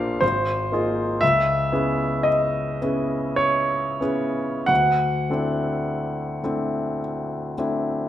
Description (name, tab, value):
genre	classical, impressionist solo piano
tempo	44-61 BPM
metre	3/4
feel	rubato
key	unclear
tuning	A4 = 441 Hz
part	warm concert grand piano	solo	0.0-8.1 s	G#1 to G5	-20 LUFS	equal	none
room	moderate recital hall reverb, RT60 1.3 s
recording	none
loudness	-20 LUFS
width	side -12 dB against mid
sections	0.0-8.1 A section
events	none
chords	0.2 G#69; 1.2 C#m7; 4.7 D9